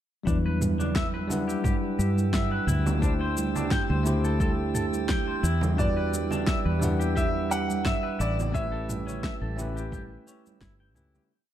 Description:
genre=sunset chillout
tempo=87 BPM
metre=4/4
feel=swing 54% on 16ths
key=E minor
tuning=A4 = 440 Hz
part: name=bell-like tine electric piano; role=accompaniment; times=0.2-11.3 s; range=F#3 to F#5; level=-31 LUFS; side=moving between left 3 dB and right 6 dB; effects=auto-pan, vintage 12-bit sampler grit, low-pass filter, tape echo
part: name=clean electric guitar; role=arpeggios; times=0.3-11.2 s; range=C#4 to G5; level=-35 LUFS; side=left 2 dB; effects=vintage 12-bit sampler grit, tape echo
part: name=fingered electric bass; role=bass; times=0.3-11.2 s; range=G1 to G2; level=-28 LUFS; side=equal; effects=none
part: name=deep house drum kit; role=drums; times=0.3-11.3 s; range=cabasa, snare drum, toms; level=-33 LUFS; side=equal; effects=small room ambience
part: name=electronic kick drum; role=drums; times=0.3-10.8 s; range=none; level=-29 LUFS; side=equal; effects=small room ambience
part: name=drifting glass-harmonics texture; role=texture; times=1.1-11.3 s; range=G4 to E6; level=-38 LUFS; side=right 3 dB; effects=chorus, built-in reverb
part: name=congas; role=percussion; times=0.6-11.3 s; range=none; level=-35 LUFS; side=right 4 dB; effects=none
part: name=bright grand piano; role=melody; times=5.8-10.6 s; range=D5 to F#5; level=-32 LUFS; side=right 1 dB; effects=tape echo
room=light reverb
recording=dark, warm production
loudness=-24 LUFS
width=side -11 dB against mid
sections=0.3-11.3 groove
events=fade-out 7.6-11.3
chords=0.3 Em7; 3.0 D7sus4; 5.4 Em7; 8.5 A7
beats=| 0.27 0.96 1.65 2.34 | 3.03 3.72 4.41 5.09 | 5.79 6.47 7.16 7.85 | 8.54 9.23 9.92 10.61

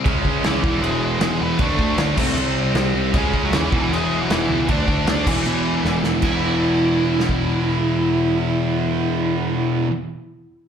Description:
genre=punk rock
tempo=155 BPM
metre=4/4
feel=straight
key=E mixolydian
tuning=A4 = 441 Hz
part: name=distorted electric guitar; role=riff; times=0.0-9.9 s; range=E2 to D4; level=-24 LUFS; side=left 8 dB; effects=overdrive, slapback echo
part: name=tight distorted guitar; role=riff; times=0.0-9.9 s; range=E2 to D4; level=-25 LUFS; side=right 11 dB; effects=distortion, slapback echo
part: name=thick fuzz guitar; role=riff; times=0.1-9.9 s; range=E2 to D4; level=-27 LUFS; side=right 1 dB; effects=distortion, slapback echo
part: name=fuzz picked electric bass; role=bass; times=0.1-9.8 s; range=E1 to D#2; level=-25 LUFS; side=equal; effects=overdrive
part: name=loose indie drum kit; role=drums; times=0.1-7.4 s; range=crash cymbal, kick drum, snare drum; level=-23 LUFS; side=equal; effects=none
part: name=nasal lead guitar with a parked wah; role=melody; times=0.5-9.8 s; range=E3 to D5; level=-24 LUFS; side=right 2 dB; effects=overdrive, slapback echo
room=small room ambience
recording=live gig heard through the venue's PA, club reverb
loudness=-17 LUFS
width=side -8 dB against mid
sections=0.0-6.2 A section; 6.2-9.3 B section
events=drum fill 5.8-6.2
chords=0.1 C#m; 0.6 E; 1.6 D5; 2.2 C5; 3.1 C#m; 3.7 E; 4.7 D5; 5.3 E5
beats=| 0.06 0.44 0.83 1.21 | 1.60 1.99 2.37 2.76 | 3.14 3.53 3.92 4.30 | 4.69 5.07 5.46 5.84 | 6.23 6.62 7.00 7.39 | 7.78 8.16 8.55 8.94

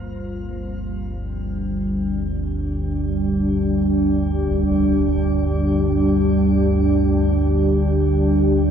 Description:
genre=dark ambient drone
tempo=free time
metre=none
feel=none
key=unclear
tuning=A4 = 439 Hz
part: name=deep dark ambient pad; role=sustained chords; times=0.0-8.7 s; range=G3 to C5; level=-19 LUFS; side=equal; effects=chorus, built-in reverb, shimmer reverb
part: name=deep rumbling drone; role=drone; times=0.0-8.7 s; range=G1 to D2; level=-22 LUFS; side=equal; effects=built-in reverb, wide subtle chorus
part: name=concert bass drum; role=percussion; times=4.5-4.7 s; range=none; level=-36 LUFS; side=equal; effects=none
room=wet lush hall reverb, RT60 2.5 s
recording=dreamy mix soaked in reverb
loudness=-17 LUFS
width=side -8 dB against mid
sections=0.0-8.7 A section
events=none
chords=0.0 Bb/G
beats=free time

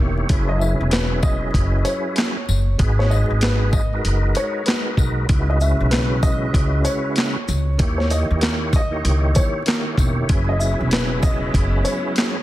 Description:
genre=hip hop, boom-bap hip-hop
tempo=96 BPM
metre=4/4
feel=swing 63% on 16ths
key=unclear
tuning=A4 = 440 Hz
part: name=tonewheel organ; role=accompaniment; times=0.0-12.4 s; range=C#3 to C#5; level=-25 LUFS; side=right 1 dB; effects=chorus vibrato, fast rotary speaker, cassette tape
part: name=upright bass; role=bass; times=0.0-11.8 s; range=E1 to D#2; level=-20 LUFS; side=equal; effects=none
part: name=boom bap sampler-style drum kit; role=drums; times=0.3-12.4 s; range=handclaps, hi-hat, kick drum, shaker, snare drum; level=-20 LUFS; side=equal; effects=none
part: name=dark upright piano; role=melody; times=0.5-12.4 s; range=A#4 to E5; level=-27 LUFS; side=left 2 dB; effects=ping-pong delay
part: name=tambourine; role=percussion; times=0.6-12.0 s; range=none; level=-36 LUFS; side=left 9 dB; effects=none
part: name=clear studio string section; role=sustained chords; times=10.3-12.4 s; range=C#3 to E4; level=-31 LUFS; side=equal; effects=none
room=small room ambience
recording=dense, heavily limited modern master, vinyl crackle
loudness=-17 LUFS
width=side -15 dB against mid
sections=0.3-12.4 A section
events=none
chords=0.3 F#9sus4; 2.8 G#m7; 5.3 C#m11; 7.8 D#7b9; 10.3 F#9sus4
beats=| 0.29 0.92 1.54 2.17 | 2.79 3.42 4.04 4.67 | 5.29 5.92 6.54 7.17 | 7.79 8.42 9.04 9.67 | 10.29 10.92 11.54 12.17

